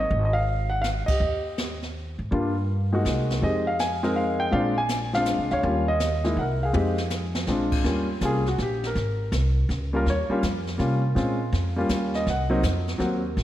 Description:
jazz piano trio; 163 BPM; 3/4; swing 66% on 8ths; Eb mixolydian; A4 = 441 Hz
dark grand piano; melody; 0.0-13.2 s; Gb3 to Ab5; -25 LUFS; equal
upright bass; bass; 0.0-13.4 s; Ab1 to C3; -26 LUFS; equal
jazz brush drum kit; drums; 0.1-13.4 s; brushed snare drum, crash cymbal, hi-hat, kick drum, ride cymbal, snare drum, toms; -32 LUFS; equal
moderate lush hall reverb, RT60 1.7 s, small room ambience; dreamy mix soaked in reverb; -22 LUFS; side -13 dB against mid
0.0-7.8 A section; 7.8-13.4 B section
band accent 1.0; drum fill 6.7-7.5; grand piano solo 7.8-13.4
0.0 Ab5; 1.2 Eb; 2.3 Gm7; 3.0 Ab9/C; 3.4 Fm7; 4.5 Bb9; 5.6 Eb9; 6.4 Ab69/C; 6.7 Fm7; 7.5 Bb9; 7.8 Eb9; 8.9 Abadd9; 10.1 Eb9; 11.2 Bbm7; 11.9 Eb9; 12.3 Ab9 (rootless)

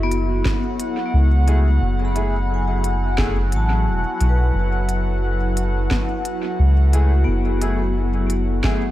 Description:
ambient dub; 88 BPM; 4/4; swing 60% on 16ths; F# minor; A4 = 436 Hz
warbly tape-like pad; sustained chords; 0.0-8.9 s; F#3 to F#5; -25 LUFS; left 1 dB; chorus, built-in reverb, phaser
vibraphone with medium hard mallets; arpeggios; 0.0-8.9 s; B3 to B5; -28 LUFS; left 3 dB; vintage 12-bit sampler grit, analog delay
soft dub sub bass; bass; 0.0-8.6 s; E1 to C#2; -18 LUFS; equal
organic electronic drum kit; drums; 0.1-8.8 s; hi-hat, snare drum; -28 LUFS; equal; overdrive, dub echo
electronic kick drum; drums; 0.5-8.8 s; -23 LUFS; equal
clear upright piano; stabs; 1.5-8.8 s; A3 to G#4; -30 LUFS; equal; lush chorus, dub echo
little or no reverb; -17 LUFS; side -14 dB against mid
0.0-8.9 A section
0.0 F#m9

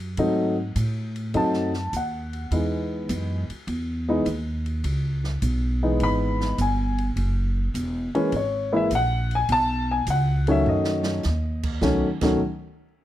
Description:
jazz piano trio; 103 BPM; 4/4; swing 69% on 8ths; B mixolydian; A4 = 442 Hz
upright bass; bass; 0.0-12.4 s; E1 to A2; -25 LUFS; equal
warm upright piano; melody; 0.2-12.4 s; D#3 to B5; -23 LUFS; left 1 dB
open jazz drum kit; drums; 0.2-12.3 s; crash cymbal, hi-hat, kick drum, ride cymbal, snare drum; -36 LUFS; right 2 dB
little or no reverb; -22 LUFS; side -13 dB against mid
0.0-11.8 A section; 11.8-13.0 B section
upright piano solo 0.0-11.8; drum fill 10.7-11.2
0.2 G#7b9; 2.5 C#m7; 7.2 F#9; 9.5 B9

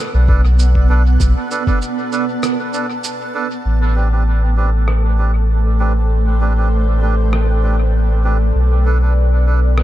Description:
ambient dub; 98 BPM; 4/4; swing 53% on 16ths; A dorian; A4 = 441 Hz
granular cloud pad; sustained chords; 0.0-9.8 s; A3 to A5; -22 LUFS; right 2 dB; built-in reverb
warm sub bass; bass; 0.1-9.8 s; A1 to B1; -13 LUFS; equal
melodica; stabs; 0.3-9.6 s; C4 to B4; -25 LUFS; right 4 dB; dub echo
electronic kick drum; drums; 0.3-1.8 s; -16 LUFS; equal
electronic cabasa and rim click; drums; 0.6-9.8 s; -28 LUFS; right 1 dB; low-pass filter on perc, low-pass filter on snare, low-pass filter on room, dub echo
digital ambience; -13 LUFS; side -14 dB against mid
0.0-3.7 A section; 3.7-9.8 B section
break 2.4-3.7
0.0 Bm7; 3.7 Am11; 8.6 Bm7

